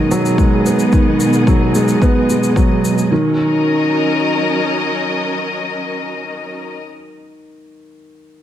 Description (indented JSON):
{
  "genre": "piano and strings electronica",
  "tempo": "110 BPM",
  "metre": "4/4",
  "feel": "straight",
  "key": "F# major",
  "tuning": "A4 = 440 Hz",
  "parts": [
    { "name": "warm studio string section", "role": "sustained chords", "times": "0.0-6.8 s", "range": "B2 to D#5", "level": "-18 LUFS", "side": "left 1 dB", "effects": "none" },
    { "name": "felt-muted upright piano", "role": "riff", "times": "0.0-8.4 s", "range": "D#3 to B3", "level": "-16 LUFS", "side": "right 1 dB", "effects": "digital delay" },
    { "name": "shaker", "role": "drums", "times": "0.1-3.1 s", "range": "none", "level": "-28 LUFS", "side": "left 4 dB", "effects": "overdrive" },
    { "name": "electronic kick drum", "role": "drums", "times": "0.4-2.7 s", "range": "none", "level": "-15 LUFS", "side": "left 1 dB", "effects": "overdrive" }
  ],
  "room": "moderate lush hall reverb, RT60 1.8 s, small room reverb",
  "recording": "none",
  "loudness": "-13 LUFS",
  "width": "side -11 dB against mid",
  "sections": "0.0-3.1 A section; 3.1-7.5 B section",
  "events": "none",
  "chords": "0.0 B6; 3.1 F#6"
}